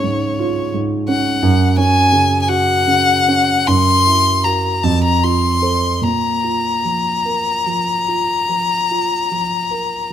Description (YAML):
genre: classical, romantic duo for violin and grand piano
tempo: 48-59 BPM (dotted quarters)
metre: 12/8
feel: rubato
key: Bb minor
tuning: A4 = 441 Hz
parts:
  - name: clear violin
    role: melody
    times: 0.0-10.1 s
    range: Db5 to C6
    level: -16 LUFS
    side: left 3 dB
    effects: none
  - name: dark concert grand piano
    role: accompaniment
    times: 0.0-10.1 s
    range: F2 to C5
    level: -17 LUFS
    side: right 3 dB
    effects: none
room: moderate recital hall reverb, RT60 1.4 s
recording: close, detailed microphones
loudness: -14 LUFS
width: side -10 dB against mid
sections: 0.0-10.1 A section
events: none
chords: 0.0 Db; 1.4 Gb5; 3.7 Gb7; 4.8 F; 6.0 Bb5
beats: 0.40 | 1.43 2.48 3.68 4.83 | 6.01 7.26 8.49 9.71